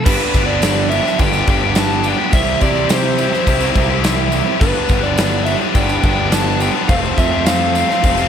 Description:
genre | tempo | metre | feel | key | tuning
classic rock | 105 BPM | 4/4 | straight | G mixolydian | A4 = 439 Hz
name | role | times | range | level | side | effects
overdriven slide guitar | melody | 0.0-8.3 s | B4 to A5 | -20 LUFS | equal | slapback echo
picked swing-style acoustic guitar | accompaniment | 0.0-8.3 s | G2 to A4 | -28 LUFS | right 6 dB | none
crunchy overdriven guitar | riff | 0.0-8.3 s | C3 to C5 | -23 LUFS | right 12 dB | none
tight distorted guitar | riff | 0.0-8.3 s | F2 to G4 | -20 LUFS | left 13 dB | distortion
fuzz picked electric bass | bass | 0.1-8.3 s | F1 to C3 | -20 LUFS | equal | overdrive
huge arena drum kit | drums | 0.1-8.2 s | crash cymbal, kick drum, snare drum | -18 LUFS | equal | none
tambourine | percussion | 0.1-8.3 s | none | -33 LUFS | right 15 dB | none
room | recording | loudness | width
light reverb, studio ambience | none | -13 LUFS | side -8 dB against mid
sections
0.1-8.3 A section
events
none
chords
0.1 G; 2.3 C; 4.6 G; 6.9 F

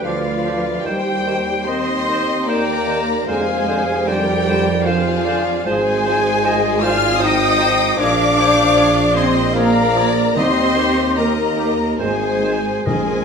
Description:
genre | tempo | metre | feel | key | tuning
classical, slow romantic movement for symphony orchestra | 67-79 BPM | 3/4 | rubato | Eb major from 5.7 s | A4 = 439 Hz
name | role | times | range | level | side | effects
dark chamber violin section | melody | 0.0-13.2 s | F5 to F6 | -22 LUFS | left 3 dB | none
bright concert flute | second line | 0.0-13.2 s | F5 to F6 | -26 LUFS | left 1 dB | none
clear clarinet | second line | 0.0-13.2 s | G4 to G5 | -25 LUFS | left 1 dB | none
rich chamber violin section | second line | 0.0-13.2 s | Ab4 to Ab5 | -25 LUFS | left 2 dB | none
mellow bassoon | accompaniment | 0.0-13.0 s | D3 to F3 | -29 LUFS | right 2 dB | none
rich chamber viola section | accompaniment | 0.0-13.2 s | F4 to F5 | -22 LUFS | left 1 dB | none
mellow French horn section | sustained chords | 0.0-13.2 s | F3 to F4 | -24 LUFS | left 4 dB | none
clear tuba | bass | 0.0-13.2 s | F1 to Eb2 | -25 LUFS | right 4 dB | none
rich studio double bass section | bass | 0.0-13.2 s | Ab1 to F2 | -26 LUFS | right 5 dB | none
rich symphonic cello section | bass | 0.0-13.2 s | F3 to F4 | -25 LUFS | right 3 dB | none
clear oboe | second line | 0.1-13.0 s | G4 to Eb5 | -31 LUFS | right 1 dB | none
timpani | percussion | 10.4-13.2 s | Bb2 to Eb3 | -24 LUFS | left 1 dB | none
room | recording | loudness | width
wet recital hall reverb, RT60 1.7 s | none | -14 LUFS | side -6 dB against mid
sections
0.0-13.2 A section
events
none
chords
0.0 G7/D; 0.9 Cm/Eb; 3.3 Dm7b5/F; 5.7 Fm/Ab; 8.0 Bb7; 10.4 Eb; 12.0 Ab

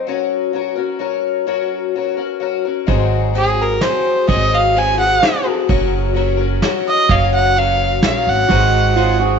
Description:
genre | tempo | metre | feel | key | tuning
acoustic folk duo or small band | 128 BPM | 3/4 | straight | Ab mixolydian | A4 = 441 Hz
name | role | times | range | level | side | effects
picked twelve-string acoustic guitar | accompaniment | 0.0-9.4 s | Ab2 to Bb4 | -19 LUFS | left 10 dB | none
upright bass | bass | 2.9-9.4 s | Gb1 to Bb1 | -18 LUFS | right 3 dB | none
soft brush drum kit | drums | 2.9-9.1 s | kick drum, ride cymbal, snare drum | -22 LUFS | right 2 dB | none
rich fiddle | melody | 3.4-9.2 s | Ab4 to Ab5 | -15 LUFS | right 2 dB | none
electric guitar through a small old amp | arpeggios | 8.5-9.4 s | F4 to Gb4 | -18 LUFS | right 16 dB | harmonic tremolo
room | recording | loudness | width
moderate plate reverb, RT60 1.6 s, small room reverb | 1960s-style stereo with parts hard left and right, tape saturation, nothing above 7.6 kHz | -14 LUFS | side -6 dB against mid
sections
0.0-2.9 A section; 2.9-9.4 B section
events
fiddle solo 2.9-9.4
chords
0.1 Gb; 2.9 Ab7; 5.7 Gb; 8.5 Ab7

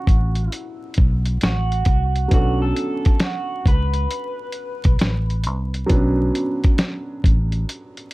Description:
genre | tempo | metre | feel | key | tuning
lo-fi hip hop | 67 BPM | 4/4 | swing 64% on 16ths | B minor | A4 = 439 Hz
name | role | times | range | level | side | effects
electric guitar through a small old amp | melody | 0.0-8.1 s | F#4 to B4 | -29 LUFS | right 2 dB | lush chorus, low-pass filter, analog delay
dark upright piano | accompaniment | 0.0-8.1 s | F#3 to B4 | -25 LUFS | right 1 dB | low-pass filter
vintage muted fingered electric bass | bass | 0.1-7.6 s | A1 to C#2 | -20 LUFS | equal | none
lo-fi sampler-style drum kit | drums | 0.1-8.1 s | hi-hat, kick drum, snare drum | -17 LUFS | equal | none
room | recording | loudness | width
little or no reverb | vinyl crackle | -17 LUFS | side -20 dB against mid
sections
0.0-8.1 A section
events
none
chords
0.0 Bm9

